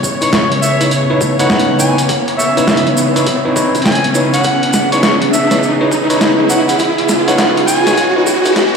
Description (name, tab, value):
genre	glitch hop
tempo	102 BPM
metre	4/4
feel	swing 64% on 16ths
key	C# minor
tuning	A4 = 440 Hz
part	warm studio string section	sustained chords	0.0-8.8 s	C#3 to C#5	-18 LUFS	equal	stereo widening, sidechain pumping, low-pass filter
part	electronic kick drum	drums	0.0-8.5 s	none	-26 LUFS	left 1 dB	none
part	cabasa	percussion	0.0-8.7 s	none	-23 LUFS	right 3 dB	none
part	riser	sound effects	0.0-8.8 s	none	-17 LUFS	equal	none
part	overdriven harmonica	melody	0.2-8.2 s	C#5 to G#5	-18 LUFS	equal	vintage 12-bit sampler grit, tape echo
part	bell-like tine electric piano	stabs	0.2-8.6 s	D#4 to C#5	-17 LUFS	equal	sidechain pumping, low-pass filter, tape echo
part	boom bap sampler-style drum kit	drums	0.2-8.7 s	hi-hat, snare drum	-17 LUFS	equal	none
room	wet lush hall reverb, RT60 2.5 s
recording	played on a big sound system in a bare room, large studio reverb, high-pass filter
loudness	-10 LUFS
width	side -5 dB against mid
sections	0.0-8.8 A section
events	build-up 0.0-8.8; riser 0.0-8.8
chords	0.0 C#m9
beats	0.33 0.92 1.50 | 2.09 2.68 3.27 3.86 | 4.45 5.04 5.62 6.21 | 6.80 7.39 7.98 8.56